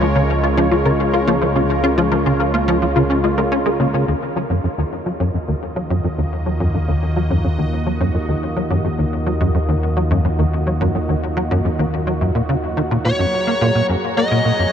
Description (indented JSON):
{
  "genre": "ambient, sequencer-driven space music",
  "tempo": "107 BPM",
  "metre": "4/4",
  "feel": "straight",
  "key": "Eb minor from 4.1 s",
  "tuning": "A4 = 442 Hz",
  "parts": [
    { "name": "sweeping resonant pad", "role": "sustained chords", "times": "0.0-14.7 s", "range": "Db3 to Bb5", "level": "-22 LUFS", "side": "right 1 dB", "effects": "chorus" },
    { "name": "wide unison pluck", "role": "arpeggios", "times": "0.0-3.9 s", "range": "Bb3 to Bb4", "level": "-23 LUFS", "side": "left 3 dB", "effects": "auto-pan, ping-pong delay" },
    { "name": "tight sequencer bass", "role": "riff", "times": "0.0-14.7 s", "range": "Eb2 to F4", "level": "-19 LUFS", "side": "equal", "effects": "ensemble chorus, ping-pong delay" },
    { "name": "analog drone", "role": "bass", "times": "0.0-14.7 s", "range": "Db2 to Gb2", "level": "-22 LUFS", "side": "equal", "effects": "chorus, phaser" },
    { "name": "bubbling stepped-filter texture", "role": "texture", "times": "0.0-4.1 s", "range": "Bb4", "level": "-32 LUFS", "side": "right 1 dB", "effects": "chorus, built-in reverb" },
    { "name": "smooth overdriven lead guitar", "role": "melody", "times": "13.1-14.7 s", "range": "Db5 to Eb5", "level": "-19 LUFS", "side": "left 1 dB", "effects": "ping-pong delay" }
  ],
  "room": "moderate huge ambient reverb, RT60 9.0 s",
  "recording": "dark, warm production",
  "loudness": "-16 LUFS",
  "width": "side -8 dB against mid",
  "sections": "0.0-4.1 A section; 4.1-14.7 B section",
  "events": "fade-in on analog synth pad 4.1-14.7",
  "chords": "0.0 Db; 4.1 Ebmadd9; 13.1 Gbadd9",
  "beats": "0.15 0.72 1.28 | 1.84 2.40 2.96 3.52 | 4.08 4.64 5.20 5.76 | 6.32 6.88 7.45 8.01 | 8.57 9.13 9.69 10.25 | 10.81 11.37 11.93 12.49 | 13.05 13.61 14.17"
}